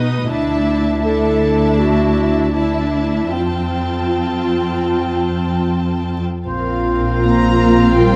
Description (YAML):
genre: cinematic, emotional film score for orchestra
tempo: 75-82 BPM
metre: 4/4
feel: rubato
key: unclear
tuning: A4 = 440 Hz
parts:
  - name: rich studio violin section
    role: second line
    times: 0.0-8.2 s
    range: Bb4 to D#6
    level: -27 LUFS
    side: equal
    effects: none
  - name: rich studio viola section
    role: accompaniment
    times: 0.0-8.2 s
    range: C4 to B4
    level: -22 LUFS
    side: equal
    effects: none
  - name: warm studio cello section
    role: bass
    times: 0.0-8.2 s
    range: D2 to Bb3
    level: -21 LUFS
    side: equal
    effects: none
  - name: mellow clarinet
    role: second line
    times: 1.0-8.2 s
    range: E4 to A4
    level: -24 LUFS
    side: equal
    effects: none
  - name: mellow cor anglais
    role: second line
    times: 6.5-8.2 s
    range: C5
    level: -24 LUFS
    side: equal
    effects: none
  - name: warm French horn section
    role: sustained chords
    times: 6.5-8.2 s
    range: C4 to F4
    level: -24 LUFS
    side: equal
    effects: none
  - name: rich studio double bass section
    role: bass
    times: 6.5-8.2 s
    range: Bb1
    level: -21 LUFS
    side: equal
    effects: none
  - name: rich studio violin section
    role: melody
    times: 7.2-8.2 s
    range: G5 to Bb5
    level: -26 LUFS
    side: equal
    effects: none
room: moderate scoring stage reverb, RT60 1.8 s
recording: dark, warm production, vinyl crackle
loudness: -17 LUFS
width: mono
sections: 0.0-6.5 A section; 6.5-8.2 A section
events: none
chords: 0.3 Dsus2; 3.3 Fadd9; 6.5 Bbsus2